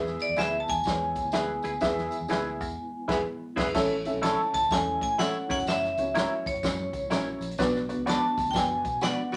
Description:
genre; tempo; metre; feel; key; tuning
uptempo 1960s-style soul; 125 BPM; 4/4; swing 64% on 8ths; A major; A4 = 440 Hz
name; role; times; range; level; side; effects
dark upright piano; accompaniment; 0.0-9.4 s; B3 to E5; -33 LUFS; equal; none
mellow tonewheel organ; sustained chords; 0.0-9.4 s; E3 to F#4; -44 LUFS; equal; none
vintage muted fingered electric bass; bass; 0.0-9.4 s; E1 to B2; -42 LUFS; equal; none
vintage drum kit; drums; 0.1-9.4 s; crash cymbal, hi-hat, kick drum, snare drum; -35 LUFS; equal; none
vibraphone with hard mallets; melody; 0.2-9.3 s; C#5 to A5; -31 LUFS; equal; none
tambourine; percussion; 0.2-9.4 s; none; -48 LUFS; equal; none
clean electric guitar; stabs; 0.4-9.4 s; E4 to D5; -35 LUFS; equal; phaser
bright saxophone section; second line; 3.1-3.7 s; B3 to G#4; -39 LUFS; equal; none
room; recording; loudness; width
wet studio reverb, RT60 0.5 s; none; -28 LUFS; mono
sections
0.0-3.7 A section; 3.7-9.4 B section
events
band accent 1.8-3.7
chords
0.0 E; 3.7 A; 5.4 F#7; 7.6 Bm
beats
0.38 0.86 1.34 | 1.82 2.30 2.78 3.26 | 3.74 4.22 4.70 5.18 | 5.66 6.14 6.62 7.11 | 7.58 8.07 8.55 9.03

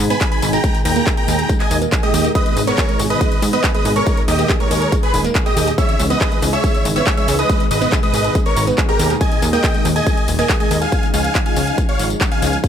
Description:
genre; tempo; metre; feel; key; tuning
uplifting trance; 140 BPM; 4/4; straight; G# harmonic minor; A4 = 443 Hz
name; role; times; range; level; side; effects
analog string pad; sustained chords; 0.0-12.7 s; A#2 to D#4; -24 LUFS; left 1 dB; ensemble chorus, sidechain pumping
plucky analog bass; bass; 0.0-12.6 s; D#1 to G#2; -20 LUFS; equal; sidechain pumping
big-room dance drum kit; drums; 0.0-12.7 s; handclaps, hi-hat, tambourine; -24 LUFS; left 1 dB; sidechain pumping on hats, sidechain pumping on perc
big supersaw lead; melody; 0.1-12.6 s; G4 to B5; -21 LUFS; right 1 dB; sidechain pumping, ping-pong delay
plucky unison lead; second line; 0.1-11.1 s; A#5 to B6; -27 LUFS; right 1 dB; analog chorus, sidechain pumping, ping-pong delay
analog pluck; arpeggios; 0.1-10.9 s; G#3 to G#4; -24 LUFS; right 4 dB; chorus, sidechain pumping, ping-pong delay
electronic kick drum; drums; 0.2-12.7 s; none; -18 LUFS; equal; none
room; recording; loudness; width
digital ambience; none; -14 LUFS; side -9 dB against mid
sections
0.0-12.7 A section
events
none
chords
0.0 G#m; 0.6 D#sus4; 2.4 G#m; 4.1 D#sus4; 5.8 C#madd9; 7.5 G#m; 9.2 D#sus4; 10.9 C#add9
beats
0.21 | 0.64 1.07 1.49 1.92 | 2.35 2.78 3.21 3.64 | 4.07 4.49 4.92 5.35 | 5.78 6.21 6.64 7.07 | 7.49 7.92 8.35 8.78 | 9.21 9.64 10.07 10.49 | 10.92 11.35 11.78 12.21 | 12.64

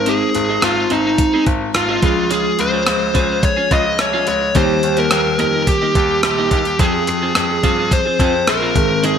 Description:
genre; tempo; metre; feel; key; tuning
1980s-style pop; 107 BPM; 4/4; straight; F minor; A4 = 443 Hz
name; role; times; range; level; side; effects
smooth overdriven lead guitar; melody; 0.0-9.2 s; Eb4 to Eb5; -17 LUFS; left 1 dB; ping-pong delay
mellow tine electric piano; accompaniment; 0.0-9.2 s; Eb3 to C5; -22 LUFS; equal; medium stereo tremolo
bright concert grand piano; bass; 0.0-9.2 s; Ab1 to G2; -24 LUFS; left 2 dB; none
twelve-string electric guitar; riff; 0.1-9.2 s; Bb3 to Ab4; -23 LUFS; right 4 dB; analog chorus, ping-pong delay
clean 12-bit digital drum machine; drums; 0.1-9.2 s; hi-hat, kick drum, rim click; -19 LUFS; equal; gated reverb
room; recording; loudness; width
moderate plate reverb, RT60 1.9 s; bright 1980s-style digital production; -13 LUFS; side -8 dB against mid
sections
0.0-9.2 A section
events
none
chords
0.0 Ab; 2.0 Db; 4.6 Eb; 6.8 Fm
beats
| 0.07 0.63 1.19 1.75 | 2.31 2.87 3.43 3.99 | 4.55 5.11 5.67 6.23 | 6.79 7.36 7.92 8.48 | 9.04

